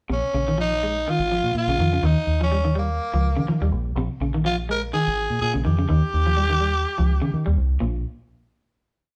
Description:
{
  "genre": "afrobeat",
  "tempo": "125 BPM",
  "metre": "4/4",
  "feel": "swing 56% on 16ths",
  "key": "Bb dorian",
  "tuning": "A4 = 440 Hz",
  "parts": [
    { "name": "raspy tenor saxophone", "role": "melody", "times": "0.1-7.5 s", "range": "Bb3 to Bb4", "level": "-26 LUFS", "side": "equal", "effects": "none" },
    { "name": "electric guitar at the edge of break-up", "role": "arpeggios", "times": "0.1-8.0 s", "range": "Bb2 to Ab3", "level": "-28 LUFS", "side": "equal", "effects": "none" },
    { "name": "deep dub fingered electric bass", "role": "bass", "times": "0.1-8.0 s", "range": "Ab1 to Eb3", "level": "-25 LUFS", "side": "equal", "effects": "none" }
  ],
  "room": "moderate stone room reverb, RT60 1.0 s",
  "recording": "band playing live in one room",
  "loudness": "-22 LUFS",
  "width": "mono",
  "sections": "0.1-7.8 groove; 7.8-9.2 final note",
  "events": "none",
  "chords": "0.1 Bbm7; 2.0 Eb9; 4.0 Bb7(no3); 5.9 Eb7; 7.8 N.C.",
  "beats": "| 0.10 0.59 1.07 1.55 | 2.04 2.52 3.01 3.49 | 3.97 4.45 4.93 5.41 | 5.89 6.38 6.86 7.34 | 7.82"
}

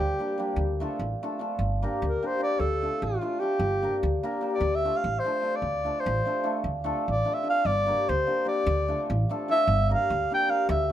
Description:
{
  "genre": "balkan folk, Balkan wedding band",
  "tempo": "297 BPM (eighths)",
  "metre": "5/8",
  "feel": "straight",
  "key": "D minor",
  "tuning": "A4 = 439 Hz",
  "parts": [
    { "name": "mellow alto saxophone", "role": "melody", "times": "0.0-10.9 s", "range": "F4 to G5", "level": "-26 LUFS", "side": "equal", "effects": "plate reverb" },
    { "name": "hammered dulcimer", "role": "accompaniment", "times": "0.0-10.9 s", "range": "G3 to Bb4", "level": "-30 LUFS", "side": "left 1 dB", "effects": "none" },
    { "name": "upright bass", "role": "bass", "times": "0.0-10.9 s", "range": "G1 to D2", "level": "-28 LUFS", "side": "right 1 dB", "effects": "none" }
  ],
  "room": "moderate studio reverb, RT60 0.6 s",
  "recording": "none",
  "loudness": "-24 LUFS",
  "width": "side -11 dB against mid",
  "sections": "0.0-10.9 A section",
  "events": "alto saxophone solo 0.0-10.9",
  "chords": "0.0 Gm; 0.6 Dm; 1.6 Gm; 2.6 Dm; 3.6 Gm; 4.6 Dm; 7.6 Gm; 8.7 Dm; 9.7 Gm",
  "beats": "0.16 0.37 | 0.57 0.77 0.97 1.17 1.38 | 1.58 1.78 1.98 2.19 2.39 | 2.59 2.79 2.99 3.20 3.40 | 3.60 3.80 4.00 4.21 4.41 | 4.61 4.81 5.01 5.22 5.42 | 5.62 5.82 6.03 6.23 6.43 | 6.63 6.83 7.04 7.24 7.44 | 7.64 7.84 8.05 8.25 8.45 | 8.65 8.86 9.06 9.26 9.46 | 9.66 9.87 10.07 10.27 10.47 | 10.67 10.88"
}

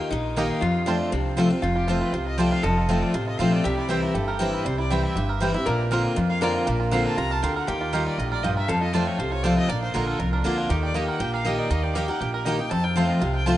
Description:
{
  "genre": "bluegrass",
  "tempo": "238 BPM",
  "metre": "4/4",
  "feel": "straight",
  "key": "F mixolydian",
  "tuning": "A4 = 440 Hz",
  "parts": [
    { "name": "lap resonator guitar", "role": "second line", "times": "0.0-9.5 s", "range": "C4 to Bb4", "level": "-31 LUFS", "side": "left 2 dB", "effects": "none" },
    { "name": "picked steel-string acoustic guitar", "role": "accompaniment", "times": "0.0-13.6 s", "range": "F2 to G4", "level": "-24 LUFS", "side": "left 1 dB", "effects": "none" },
    { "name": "upright bass", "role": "bass", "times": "0.1-13.6 s", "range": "F1 to F2", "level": "-28 LUFS", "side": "right 1 dB", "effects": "none" },
    { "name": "bluegrass banjo", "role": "melody", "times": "0.4-13.6 s", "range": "F3 to Bb4", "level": "-31 LUFS", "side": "right 6 dB", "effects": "none" },
    { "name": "clear fiddle", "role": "melody", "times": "0.4-13.6 s", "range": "D4 to Bb5", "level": "-32 LUFS", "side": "equal", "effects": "none" },
    { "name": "mandolin", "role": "stabs", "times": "0.4-13.6 s", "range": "Bb3 to C6", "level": "-34 LUFS", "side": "right 6 dB", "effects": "none" }
  ],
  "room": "moderate lush hall reverb, RT60 2.7 s",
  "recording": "rough home demo mix, nothing above 10.6 kHz",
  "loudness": "-21 LUFS",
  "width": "side -14 dB against mid",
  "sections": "0.0-1.6 A section; 1.6-9.7 B section; 9.7-13.6 B section",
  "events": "fiddle solo 1.6-13.6",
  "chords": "0.0 Eb; 0.6 F; 3.6 C; 5.7 Bbadd9; 7.7 Ebadd9; 8.7 F; 9.7 Bb; 10.7 Eb; 12.7 F",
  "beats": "0.11 0.37 | 0.62 0.87 1.12 1.38 | 1.63 1.88 2.13 2.38 | 2.64 2.89 3.14 3.40 | 3.65 3.90 4.15 4.41 | 4.66 4.91 5.16 5.41 | 5.67 5.92 6.17 6.42 | 6.67 6.93 7.18 7.43 | 7.68 7.93 8.19 8.44 | 8.69 8.94 9.19 9.44 | 9.70 9.95 10.20 10.45 | 10.70 10.95 11.20 11.46 | 11.71 11.96 12.21 12.46 | 12.71 12.96 13.21 13.47"
}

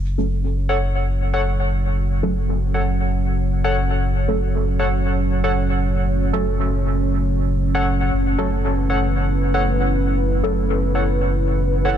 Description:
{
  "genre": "techno",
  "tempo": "117 BPM",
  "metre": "4/4",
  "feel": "straight",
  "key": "F# minor",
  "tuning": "A4 = 439 Hz",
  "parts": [
    { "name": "deep dark ambient pad", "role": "sustained chords", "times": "0.6-12.0 s", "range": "A3 to C#5", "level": "-24 LUFS", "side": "right 3 dB", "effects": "chorus, built-in reverb" },
    { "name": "warm sub bass", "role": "bass", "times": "0.0-12.0 s", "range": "F#1", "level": "-20 LUFS", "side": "equal", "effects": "tube saturation" },
    { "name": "deep mellow chord stab", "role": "stabs", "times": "0.2-10.5 s", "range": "F#3 to A4", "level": "-26 LUFS", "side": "right 1 dB", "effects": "chorus, phaser, dub echo" },
    { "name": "warbly lo-fi synth keys", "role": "riff", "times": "0.7-12.0 s", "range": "A4 to F#5", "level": "-25 LUFS", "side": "left 1 dB", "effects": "chorus, dub echo" }
  ],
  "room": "light reverb, digital ambience",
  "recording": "dense, heavily limited modern master",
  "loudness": "-18 LUFS",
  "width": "side -9 dB against mid",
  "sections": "0.0-12.0 A section",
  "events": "none",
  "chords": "0.0 F#m",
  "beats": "0.43 0.95 1.46 | 1.97 2.49 3.00 3.51 | 4.03 4.54 5.05 5.56 | 6.08 6.59 7.10 7.62 | 8.13 8.64 9.15 9.67 | 10.18 10.69 11.21 11.72"
}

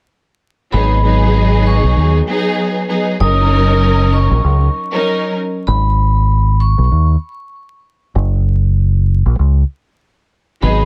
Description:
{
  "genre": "hip hop, boom-bap hip-hop",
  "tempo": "97 BPM",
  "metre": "4/4",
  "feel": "swing 57% on 16ths",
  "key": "G# minor",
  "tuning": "A4 = 440 Hz",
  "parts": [
    { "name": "vibraphone with hard mallets", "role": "melody", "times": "0.7-10.8 s", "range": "B5 to D#6", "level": "-22 LUFS", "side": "equal", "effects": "high-pass filter, low-pass filter, plate reverb, digital delay" },
    { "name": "warm symphonic string section", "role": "accompaniment", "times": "0.7-5.3, 10.6-10.8 s", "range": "F#3 to A#4", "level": "-19 LUFS", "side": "equal", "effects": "high-pass filter, low-pass filter, plate reverb" },
    { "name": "deep dub fingered electric bass", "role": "bass", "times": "0.7-10.8 s", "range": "F#1 to D#2", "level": "-14 LUFS", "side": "equal", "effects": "none" }
  ],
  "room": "light reverb",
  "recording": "vinyl crackle",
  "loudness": "-14 LUFS",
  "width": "mono",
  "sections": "0.7-10.8 A section",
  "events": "none",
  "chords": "0.7 G#m7; 3.2 F#6; 5.7 G#m; 8.2 N.C.",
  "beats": "| 0.73 1.35 1.97 2.59 | 3.21 3.82 4.44 5.06 | 5.68 6.30 6.92 7.54 | 8.15 8.77 9.39 10.01 | 10.63"
}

